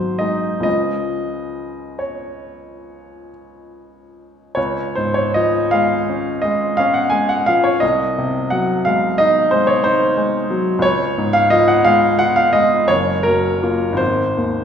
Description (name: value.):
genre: classical, romantic nocturne for solo piano.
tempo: 44-63 BPM (dotted quarters).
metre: 9/8.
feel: rubato.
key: Db major.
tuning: A4 = 438 Hz.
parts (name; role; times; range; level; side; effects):
clear baby grand piano; solo; 0.0-14.6 s; Gb1 to Ab5; -15 LUFS; equal; none.
room: wet recital hall reverb, RT60 1.6 s.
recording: heard from further back in the room.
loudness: -14 LUFS.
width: side -8 dB against mid.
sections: 0.0-4.6 A section; 4.6-14.6 A section.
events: none.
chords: 0.0 Ab7; 0.6 Db; 7.8 Ab7/C; 10.8 Db; 12.9 Gbmaj7; 14.0 Ab.